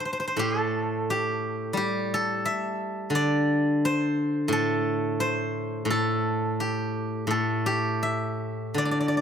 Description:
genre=chinese traditional, Chinese solo plucked strings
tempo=86 BPM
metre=4/4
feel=uneven beats, rubato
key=unclear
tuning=A4 = 441 Hz
part: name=steel-string zither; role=solo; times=0.0-9.2 s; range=A2 to E5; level=-24 LUFS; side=equal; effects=none
room=moderate recital hall reverb, RT60 1.4 s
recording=close, detailed microphones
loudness=-24 LUFS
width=side -8 dB against mid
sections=0.0-9.2 A section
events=none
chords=none

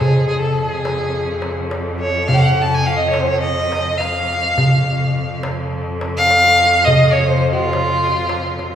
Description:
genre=Arabic maqam ensemble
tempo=105 BPM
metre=4/4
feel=straight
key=F maqam saba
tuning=A4 = 440 Hz
part: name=rich violin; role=melody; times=0.0-8.8 s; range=F4 to A5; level=-16 LUFS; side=equal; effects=none
part: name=bright cello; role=drone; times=0.0-8.8 s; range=F2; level=-25 LUFS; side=equal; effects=none
part: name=darbuka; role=percussion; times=0.0-8.7 s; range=none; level=-19 LUFS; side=equal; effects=none
room=wet church reverb, RT60 3.5 s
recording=recorded in a church or concert hall, small room reverb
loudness=-14 LUFS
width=side -9 dB against mid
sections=0.0-8.8 A section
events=drum fill 8.6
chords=none

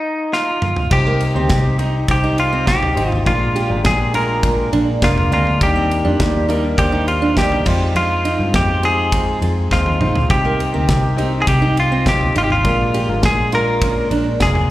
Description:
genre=piano-driven pop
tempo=102 BPM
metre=4/4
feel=straight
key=unclear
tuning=A4 = 442 Hz
part: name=direct-recorded clean electric guitar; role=melody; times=0.0-14.7 s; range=Eb4 to Bb4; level=-19 LUFS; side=equal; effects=slapback echo
part: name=modern studio drum kit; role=drums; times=0.3-14.7 s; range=crash cymbal, kick drum, ride cymbal, snare drum, toms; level=-21 LUFS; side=equal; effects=none
part: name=warm concert grand piano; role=accompaniment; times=0.9-14.7 s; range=Bb2 to Eb5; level=-22 LUFS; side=left 2 dB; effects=slapback echo
part: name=vintage muted fingered electric bass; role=bass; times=0.9-14.7 s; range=F1 to G2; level=-19 LUFS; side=equal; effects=none
part: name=fingerpicked steel-string acoustic guitar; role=riff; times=1.1-14.3 s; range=Bb3 to G4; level=-24 LUFS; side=right 4 dB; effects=slapback echo
room=light reverb, small room ambience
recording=live gig heard through the venue's PA, club reverb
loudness=-14 LUFS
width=side -15 dB against mid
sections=0.9-14.7 A section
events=stop 0.0-0.9; drum fill 0.3-0.9, 9.7-10.3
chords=0.0 F7(no3); 0.9 Cm; 3.3 Bb7; 5.6 Ebmaj7; 7.7 Fm7; 10.3 Cm; 12.6 Bb7

